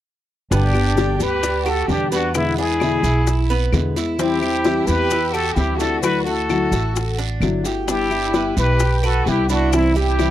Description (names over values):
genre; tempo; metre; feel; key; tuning
latin, Cuban son and guajira; 130 BPM; 4/4; straight; G major; A4 = 440 Hz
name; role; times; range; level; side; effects
trumpet with plunger mute; melody; 0.5-10.3 s; E4 to B4; -22 LUFS; left 2 dB; none
rich chamber violin section; second line; 0.5-10.3 s; B3 to G4; -26 LUFS; right 1 dB; none
nylon-string guitar; accompaniment; 0.5-10.3 s; B2 to G4; -23 LUFS; left 4 dB; none
Cuban tres; arpeggios; 0.5-10.3 s; B3 to B4; -26 LUFS; right 6 dB; none
upright bass; bass; 0.5-10.3 s; G1 to E2; -21 LUFS; right 1 dB; none
bongos; percussion; 0.5-10.3 s; none; -24 LUFS; left 5 dB; none
guiro; percussion; 0.5-10.3 s; none; -33 LUFS; right 12 dB; none
maracas; percussion; 0.5-10.3 s; none; -33 LUFS; left 11 dB; none
claves; percussion; 0.7-10.3 s; none; -32 LUFS; left 9 dB; none
room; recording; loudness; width
little or no reverb; dry, close 1970s-style studio recording; -16 LUFS; side -12 dB against mid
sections
0.5-10.3 A section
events
none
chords
0.5 G; 2.3 E7; 4.2 D13sus4; 6.0 Dadd9; 7.9 G6; 9.7 C